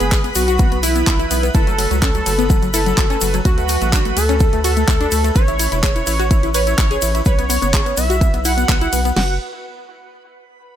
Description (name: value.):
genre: progressive house.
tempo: 126 BPM.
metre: 4/4.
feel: straight.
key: unclear.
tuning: A4 = 440 Hz.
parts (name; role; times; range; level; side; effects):
wide unison lead; melody; 0.0-9.3 s; E4 to F#5; -21 LUFS; equal; cassette tape, ping-pong delay.
tight sequenced synth; arpeggios; 0.0-9.3 s; F#3 to B4; -23 LUFS; left 2 dB; chorus, sidechain pumping, ping-pong delay.
round analog bass; bass; 0.0-9.4 s; E1 to D2; -21 LUFS; equal; sidechain pumping.
pop drum kit; drums; 0.0-9.1 s; handclaps, hi-hat, ride cymbal; -23 LUFS; equal; sidechain pumping on hats, sidechain pumping on cymbals.
egg shaker; percussion; 0.0-9.1 s; none; -28 LUFS; left 6 dB; none.
backwards swelling texture; texture; 0.0-9.2 s; B4 to B5; -30 LUFS; right 1 dB; built-in reverb, sidechain pumping.
pop drum kit; drums; 0.1-9.3 s; crash cymbal, kick drum, snare drum; -16 LUFS; equal; none.
room: little or no reverb.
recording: none.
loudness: -14 LUFS.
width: side -10 dB against mid.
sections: 0.0-9.2 A section; 9.2-10.8 B section.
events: drop 0.0-9.2.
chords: 0.0 B5; 1.5 F#m; 3.5 D; 5.4 Aadd9; 7.3 Bsus2; 9.2 N.C..